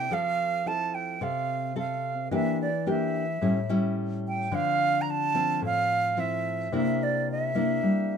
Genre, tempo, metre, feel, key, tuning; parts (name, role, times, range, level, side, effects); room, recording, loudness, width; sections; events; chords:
bossa nova; 109 BPM; 4/4; straight; F major; A4 = 439 Hz
breathy silver concert flute; melody; 0.0-8.2 s; D5 to Bb5; -27 LUFS; right 4 dB
nylon-string guitar; accompaniment; 0.0-8.2 s; A2 to A4; -28 LUFS; left 2 dB
light reverb; minimal, uncompressed stereo recording; -25 LUFS; side -7 dB against mid
0.1-8.2 A section
0.1 Fmaj7; 2.3 Em7b5; 3.4 A7; 4.5 Dm9; 6.7 C9